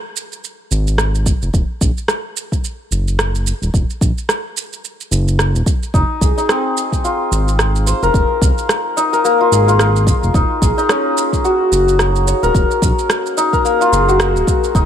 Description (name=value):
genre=organic downtempo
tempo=109 BPM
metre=4/4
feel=swing 58% on 16ths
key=Eb dorian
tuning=A4 = 441 Hz
part: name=electronic shaker and rim click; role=drums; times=0.2-14.9 s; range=none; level=-20 LUFS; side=right 2 dB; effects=none
part: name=smooth synth bass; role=bass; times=0.7-14.8 s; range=Eb1 to C2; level=-16 LUFS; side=equal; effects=none
part: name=electronic kick drum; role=drums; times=1.3-14.9 s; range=none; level=-16 LUFS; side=equal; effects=none
part: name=santur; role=arpeggios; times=5.9-14.9 s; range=Bb3 to Db5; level=-15 LUFS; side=left 2 dB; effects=ping-pong delay
room=light reverb, digital ambience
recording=none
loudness=-13 LUFS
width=side -9 dB against mid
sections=0.0-14.7 A section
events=none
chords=0.0 N.C.; 1.5 Ebm; 5.9 Fm7; 10.3 Ebm7